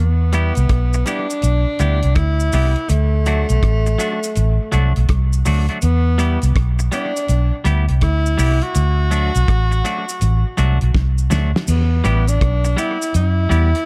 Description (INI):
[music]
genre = roots reggae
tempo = 82 BPM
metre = 4/4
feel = swing 65% on 16ths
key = E minor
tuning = A4 = 436 Hz
[part]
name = breathy tenor saxophone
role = melody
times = 0.0-13.9 s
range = A3 to F#4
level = -26 LUFS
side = equal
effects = dub echo
[part]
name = vintage muted fingered electric bass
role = bass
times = 0.0-13.7 s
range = A1 to F#2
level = -18 LUFS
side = equal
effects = none
[part]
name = clean electric guitar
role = accompaniment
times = 0.3-13.7 s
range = F#3 to G4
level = -28 LUFS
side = equal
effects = dub echo
[part]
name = damped 70s drum kit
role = drums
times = 0.3-13.9 s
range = crash cymbal, hi-hat, kick drum, rim click, snare drum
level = -24 LUFS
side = equal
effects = analog delay
[part]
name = cabasa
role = percussion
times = 0.3-13.7 s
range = none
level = -33 LUFS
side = equal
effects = none
[sound]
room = small room ambience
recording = echo-heavy mix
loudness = -17 LUFS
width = mono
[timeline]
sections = 0.0-11.7 A section; 11.7-13.9 B section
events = drum fill 10.9-11.7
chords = 0.0 Em; 2.9 D; 5.8 Em; 8.8 D; 11.7 Em